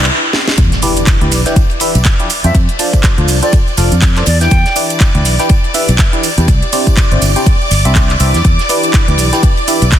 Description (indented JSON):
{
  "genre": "piano house",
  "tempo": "122 BPM",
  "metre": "4/4",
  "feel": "swing 58% on 16ths",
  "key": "E phrygian",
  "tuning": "A4 = 440 Hz",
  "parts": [
    { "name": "string machine, violins", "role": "sustained chords", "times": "0.0-10.0 s", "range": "D5 to D6", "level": "-20 LUFS", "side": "equal", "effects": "ensemble chorus, sidechain pumping" },
    { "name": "barking FM electric piano", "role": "riff", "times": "0.0-9.9 s", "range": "C3 to G5", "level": "-17 LUFS", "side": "left 1 dB", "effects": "phaser, cassette tape, sidechain pumping, dub echo" },
    { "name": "fingered electric bass", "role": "bass", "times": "0.0-9.9 s", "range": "F1 to F2", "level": "-12 LUFS", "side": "equal", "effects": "sidechain pumping, low-pass filter" },
    { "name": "house drum kit", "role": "drums", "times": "0.0-10.0 s", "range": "handclaps, hi-hat, shaker, snare drum", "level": "-17 LUFS", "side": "right 1 dB", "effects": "soft clipping on snare" },
    { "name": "big rock drum kit", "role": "drums", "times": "0.6-10.0 s", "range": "hi-hat, ride cymbal, snare drum", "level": "-24 LUFS", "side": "left 2 dB", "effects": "high-pass filter on cymbals, high-pass filter on hats, high-pass filter on snare, high-pass filter on room" },
    { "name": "electronic kick drum", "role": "drums", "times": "0.6-10.0 s", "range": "none", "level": "-10 LUFS", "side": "equal", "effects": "high-pass filter on kick, high-pass filter on room" },
    { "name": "tambourine", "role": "percussion", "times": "0.6-10.0 s", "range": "none", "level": "-28 LUFS", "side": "right 11 dB", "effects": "none" },
    { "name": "impact", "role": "sound effects", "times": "0.6-2.5 s", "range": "none", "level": "-21 LUFS", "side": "equal", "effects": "none" },
    { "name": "bright concert flute", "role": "melody", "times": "2.4-4.8 s", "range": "D5 to G5", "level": "-20 LUFS", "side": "right 1 dB", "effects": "dub echo" }
  ],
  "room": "light reverb, small room ambience",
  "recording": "dense, heavily limited modern master",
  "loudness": "-9 LUFS",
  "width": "side -11 dB against mid",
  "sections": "0.6-10.0 A section",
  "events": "stop 0.1-0.6; drum fill 0.3; drop 0.6-10.0; impact 0.6-2.5",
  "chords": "0.0 Csus2; 0.6 Em7; 2.3 F6; 4.3 Em7; 6.5 Cadd9; 8.4 Em7"
}